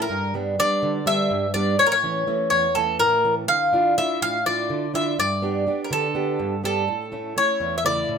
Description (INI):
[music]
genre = greek folk, Greek bouzouki band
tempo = 248 BPM (eighths)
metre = 7/8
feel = straight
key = unclear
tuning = A4 = 442 Hz
[part]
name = Greek bouzouki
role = melody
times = 0.0-8.2 s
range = A4 to F5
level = -21 LUFS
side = left 1 dB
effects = none
[part]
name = fingerpicked plugged-in steel-string acoustic guitar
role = accompaniment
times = 0.0-8.2 s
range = E2 to G4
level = -25 LUFS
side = right 2 dB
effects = none
[sound]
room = wet small room reverb, RT60 0.5 s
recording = minimal, uncompressed stereo recording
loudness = -19 LUFS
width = side -6 dB against mid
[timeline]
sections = 0.0-8.2 A section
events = none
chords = 0.1 G; 1.8 A; 3.5 Dmadd9; 5.2 G; 6.9 A